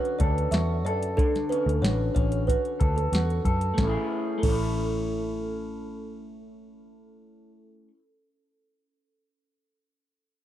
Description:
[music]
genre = indie pop, bedroom pop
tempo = 92 BPM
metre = 4/4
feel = straight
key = A major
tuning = A4 = 442 Hz
[part]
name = kalimba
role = second line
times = 0.0-5.7 s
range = A4 to E5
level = -31 LUFS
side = right 4 dB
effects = ensemble chorus, tape echo
[part]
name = electric guitar through a small old amp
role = accompaniment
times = 0.0-8.0 s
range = D3 to A4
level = -31 LUFS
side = left 2 dB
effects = wide subtle chorus, warbly pitch drift
[part]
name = soft vintage rhythm box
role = drums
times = 0.1-4.6 s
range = crash cymbal, hi-hat, kick drum, snare drum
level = -26 LUFS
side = equal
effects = overdrive
[part]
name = vintage muted picked electric bass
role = bass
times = 0.2-7.9 s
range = A1 to F#2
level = -28 LUFS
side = equal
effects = none
[sound]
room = little or no reverb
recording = dry, close 1970s-style studio recording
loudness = -23 LUFS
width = side -12 dB against mid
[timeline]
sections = 0.0-3.8 A section; 3.8-6.4 B section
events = none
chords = 0.0 Dmaj7; 3.8 Amaj7

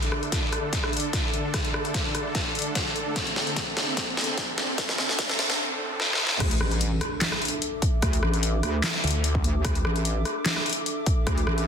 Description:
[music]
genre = heavy wobble dubstep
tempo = 148 BPM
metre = 4/4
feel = swing 53% on 16ths, half-time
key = unclear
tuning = A4 = 441 Hz
[part]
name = supersaw chords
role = sustained chords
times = 0.0-6.4 s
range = D3 to A4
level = -32 LUFS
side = right 1 dB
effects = sidechain pumping
[part]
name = dubstep drum kit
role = drums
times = 0.0-11.7 s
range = crash cymbal, handclaps, hi-hat, rim click, snare drum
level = -26 LUFS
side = left 1 dB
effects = high-pass filter on hats, high-pass filter on snare, high-pass filter on toms, high-pass filter on cymbals, high-pass filter on room
[part]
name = riser, noise sweep and impact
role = sound effects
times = 0.0-8.0 s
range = none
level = -37 LUFS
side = right 1 dB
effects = none
[part]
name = airy breathy pad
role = texture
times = 0.0-11.7 s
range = D4 to D6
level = -35 LUFS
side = right 1 dB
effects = chorus, sidechain pumping
[part]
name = electronic kick drum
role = drums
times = 0.3-11.4 s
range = none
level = -28 LUFS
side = equal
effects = none
[part]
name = wobble bass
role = bass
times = 6.4-11.7 s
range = A1 to D2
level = -26 LUFS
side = equal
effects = chorus, overdrive
[part]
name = snarling distorted saw bass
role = bass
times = 9.0-9.4 s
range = D2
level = -25 LUFS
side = equal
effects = distortion, overdrive
[sound]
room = little or no reverb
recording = dense, heavily limited modern master, high-pass filter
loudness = -23 LUFS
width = side -7 dB against mid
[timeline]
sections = 0.0-6.4 A section; 6.4-11.7 B section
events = build-up 0.0-6.4; drum fill 0.0-5.6, 6.0-6.4; filter sweep 0.0-6.4; noise sweep 4.8-6.4; drop 6.4-11.7; impact 6.4-8.0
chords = 0.0 D5

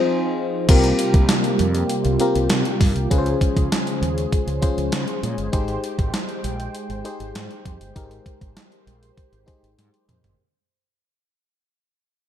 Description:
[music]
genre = 1980s-style pop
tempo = 99 BPM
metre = 4/4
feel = straight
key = unclear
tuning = A4 = 440 Hz
[part]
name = FM electric piano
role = accompaniment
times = 0.0-10.4 s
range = C4 to C5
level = -25 LUFS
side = left 3 dB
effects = chorus
[part]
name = brassy analog pad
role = sustained chords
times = 0.0-10.3 s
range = C3 to G5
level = -28 LUFS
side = right 1 dB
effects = chorus
[part]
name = mellow synth brass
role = stabs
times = 0.7-10.3 s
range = C3 to C5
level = -30 LUFS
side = right 1 dB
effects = chorus, phaser
[part]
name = fretless electric bass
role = bass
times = 0.7-10.3 s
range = G1 to Db3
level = -24 LUFS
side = equal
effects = none
[part]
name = clean 12-bit digital drum machine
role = drums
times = 0.7-10.4 s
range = crash cymbal, hi-hat, kick drum, snare drum, toms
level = -21 LUFS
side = equal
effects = gated reverb
[sound]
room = light reverb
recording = none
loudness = -18 LUFS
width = side -10 dB against mid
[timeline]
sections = 0.7-10.4 A section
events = band accent 0.0-0.7; fade-out 0.7-10.4; drum fill 9.8-10.4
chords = 0.0 Fm7; 0.7 C7sus4; 3.1 Dbmaj7; 5.5 Abmaj7

